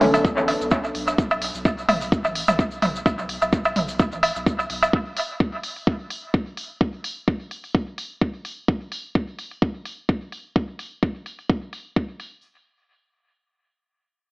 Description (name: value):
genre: dub techno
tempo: 128 BPM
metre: 4/4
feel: swing 55% on 16ths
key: B minor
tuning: A4 = 441 Hz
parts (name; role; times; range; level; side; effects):
- dark analog pad; sustained chords; 0.0-1.1 s; B3 to A4; -26 LUFS; equal; chorus, sidechain pumping
- soft dub sub bass; bass; 0.0-4.9 s; A1 to B1; -37 LUFS; equal; sidechain pumping
- electronic hi-hat; drums; 0.0-12.3 s; none; -33 LUFS; equal; low-pass filter on hats, studio reverb, low-pass filter on snare
- electronic toms and woodblock; percussion; 0.0-4.9 s; none; -23 LUFS; right 1 dB; overdrive, sidechain pumping on perc, studio reverb, sidechain pumping on toms, dub echo
- egg shaker; percussion; 0.1-4.9 s; none; -39 LUFS; left 1 dB; none
- electronic kick drum; drums; 0.2-12.1 s; none; -21 LUFS; equal; studio reverb
room: moderate echo chamber reverb, RT60 2.0 s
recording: echo-heavy mix, AM radio sound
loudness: -22 LUFS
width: side -22 dB against mid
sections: 0.0-12.4 A section; 12.4-14.3 B section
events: none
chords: 0.0 Bm7; 12.4 N.C.